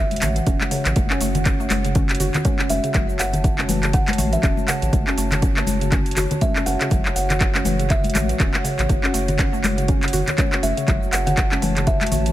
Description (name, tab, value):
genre	afro house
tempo	121 BPM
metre	4/4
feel	swing 58% on 16ths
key	F# minor pentatonic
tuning	A4 = 440 Hz
part	buzzing kalimba	melody	0.0-12.3 s	C#5 to F#5	-28 LUFS	equal	ping-pong delay
part	dark analog pad	sustained chords	0.1-12.3 s	F#4 to A5	-29 LUFS	right 1 dB	chorus, sidechain pumping
part	round analog bass	bass	0.0-12.3 s	E1 to A1	-25 LUFS	equal	sidechain pumping
part	afro-pop drum kit	drums	0.1-12.3 s	handclaps, hi-hat, shaker	-24 LUFS	equal	overdrive
part	congas	percussion	0.1-12.2 s	none	-27 LUFS	left 3 dB	none
part	mallet-like synth pluck	arpeggios	0.2-12.3 s	C#3 to F#4	-27 LUFS	equal	chorus, sidechain pumping
part	electronic kick drum	drums	0.5-12.0 s	none	-21 LUFS	equal	overdrive
room	light reverb, digital ambience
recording	none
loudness	-17 LUFS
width	side -14 dB against mid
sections	0.0-12.3 A section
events	none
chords	0.0 F#m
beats	0.47 | 0.96 1.46 1.95 2.45 | 2.94 3.44 3.94 4.43 | 4.93 5.42 5.92 6.42 | 6.91 7.41 7.90 8.40 | 8.89 9.39 9.89 10.38 | 10.88 11.38 11.87